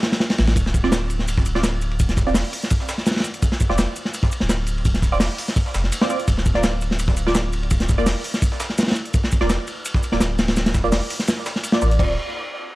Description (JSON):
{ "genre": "drum and bass, jungle", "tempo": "168 BPM", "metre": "4/4", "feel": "straight", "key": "D minor", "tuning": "A4 = 439 Hz", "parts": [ { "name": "crunchy breakbeat drum kit", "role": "drums", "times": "0.0-12.1 s", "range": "crash cymbal, hi-hat, kick drum, ride cymbal, snare drum", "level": "-20 LUFS", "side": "equal", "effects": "none" }, { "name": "soft dub sub bass", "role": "bass", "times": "0.4-12.2 s", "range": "D1 to A1", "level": "-22 LUFS", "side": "equal", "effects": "none" }, { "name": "breakbeat sampler-style drum kit", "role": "drums", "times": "0.6-12.0 s", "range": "hi-hat, shaker, snare drum", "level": "-32 LUFS", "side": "equal", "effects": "high-pass filter on perc, high-pass filter on snare, high-pass filter on hats" }, { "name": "filtered dub chord stab", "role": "stabs", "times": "0.8-12.1 s", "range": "Bb3 to D5", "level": "-26 LUFS", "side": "right 2 dB", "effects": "phaser, wide subtle chorus, cassette tape, dub echo" } ], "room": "studio reverb", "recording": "dry, gritty hardware recording, transformer saturation, vinyl crackle", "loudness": "-18 LUFS", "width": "side -19 dB against mid", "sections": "0.0-12.0 A section", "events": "drop 0.0-12.0", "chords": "0.0 N.C.; 0.6 Dm; 6.3 N.C.; 12.0 Dm7" }